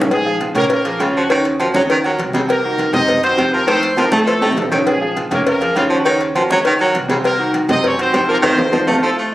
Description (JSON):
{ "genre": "latin, salsa", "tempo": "202 BPM", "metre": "4/4", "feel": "straight", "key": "Bb minor", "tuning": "A4 = 440 Hz", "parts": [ { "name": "clear concert grand piano", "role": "accompaniment", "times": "0.0-9.0 s", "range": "A2 to Db5", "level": "-19 LUFS", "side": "right 1 dB", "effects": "none" }, { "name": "upright bass", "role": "bass", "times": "0.0-9.0 s", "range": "Bb1 to Bb2", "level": "-31 LUFS", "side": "equal", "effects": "none" }, { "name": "bongos and cowbell", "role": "percussion", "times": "0.0-8.9 s", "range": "none", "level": "-22 LUFS", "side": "left 2 dB", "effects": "none" }, { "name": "timbales and agogo bells", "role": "percussion", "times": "0.0-9.0 s", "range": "none", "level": "-24 LUFS", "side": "right 1 dB", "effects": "none" }, { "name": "warm horn section", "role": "melody", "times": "0.1-9.3 s", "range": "F3 to Eb5", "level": "-18 LUFS", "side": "equal", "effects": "none" }, { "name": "congas", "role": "percussion", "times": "0.1-9.0 s", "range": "none", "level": "-27 LUFS", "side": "left 1 dB", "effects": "none" }, { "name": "breathy baritone saxophone", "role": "second line", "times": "1.0-9.3 s", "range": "Db3 to A3", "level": "-17 LUFS", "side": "equal", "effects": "slapback echo" } ], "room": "moderate studio reverb, RT60 0.6 s", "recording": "recorded on a phone in the room, club reverb", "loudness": "-13 LUFS", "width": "side -15 dB against mid", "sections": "0.1-9.3 A section", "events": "drum fill 4.4-4.9, 8.4-9.3; band accent 8.4-9.3", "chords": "0.1 Bbm7; 1.3 Ebm7; 2.5 Cm7b5; 3.7 F7; 4.9 Bbm7; 6.1 Cm7b5; 8.4 F7" }